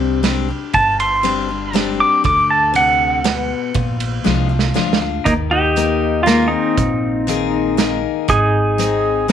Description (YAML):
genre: honky-tonk and classic country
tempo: 119 BPM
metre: 3/4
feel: straight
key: Eb major from 5.3 s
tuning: A4 = 440 Hz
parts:
  - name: picked steel-string acoustic guitar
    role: accompaniment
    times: 0.0-9.3 s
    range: G2 to Ab4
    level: -21 LUFS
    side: left 12 dB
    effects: none
  - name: upright bass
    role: bass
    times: 0.0-9.3 s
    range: G1 to Eb2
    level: -23 LUFS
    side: right 2 dB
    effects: none
  - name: vintage drum kit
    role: drums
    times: 0.2-9.3 s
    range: hi-hat, kick drum, ride cymbal, snare drum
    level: -22 LUFS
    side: right 6 dB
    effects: none
  - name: pedal steel guitar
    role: melody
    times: 0.7-9.3 s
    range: Bb3 to D6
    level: -15 LUFS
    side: right 1 dB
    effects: none
room: moderate spring reverb, RT60 1.4 s, small room ambience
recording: 1960s-style stereo with parts hard left and right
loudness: -14 LUFS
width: side -9 dB against mid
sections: 0.0-5.3 A section; 5.3-9.3 B section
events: pedal steel guitar solo 0.0-5.3; drum fill 4.3-5.3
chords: 0.0 Csus2; 2.2 D; 3.8 Bb7; 5.3 Ebsus4; 8.3 Ab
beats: 0.24 | 0.74 1.24 1.75 | 2.25 2.75 3.26 | 3.76 4.26 4.77 | 5.27 5.77 6.28 | 6.78 7.28 7.79 | 8.29 8.79 9.30